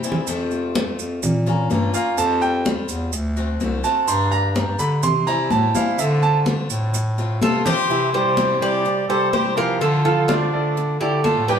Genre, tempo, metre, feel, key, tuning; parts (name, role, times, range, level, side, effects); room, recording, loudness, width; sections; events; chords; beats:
latin, Cuban son and guajira; 126 BPM; 4/4; straight; A4 = 440 Hz
picked swing-style acoustic guitar; accompaniment; 0.0-11.6 s; C3 to G4; -28 LUFS; left 4 dB
warm bass clarinet; bass; 0.0-11.6 s; C2 to D3; -23 LUFS; equal
maracas; percussion; 0.0-7.9 s; -32 LUFS; right 7 dB
congas; percussion; 0.1-11.5 s; -24 LUFS; left 2 dB
bright concert grand piano; arpeggios; 1.9-11.6 s; E3 to C6; -22 LUFS; right 5 dB
Cuban tres; melody; 7.4-11.6 s; F4 to D5; -21 LUFS; right 1 dB
bright trumpet; second line; 7.4-11.6 s; D4 to A4; -26 LUFS; left 5 dB
wet large studio reverb, RT60 0.9 s; band playing live in one room; -17 LUFS; side -7 dB against mid
0.0-7.9 A section; 7.9-11.6 B section
drum fill 0.0, 7.4-7.9; grand piano solo 0.0-7.9
0.3 F; 1.2 Bbm; 2.2 Fsus2; 3.1 D7; 4.1 Gm; 5.0 C; 6.0 Dm7; 7.9 C; 9.8 Dmadd9
| 0.28 0.75 1.23 1.70 | 2.18 2.65 3.13 3.60 | 4.08 4.56 5.03 5.51 | 5.99 6.46 6.94 7.42 | 7.90 8.38 8.85 9.33 | 9.81 10.29 10.77 11.25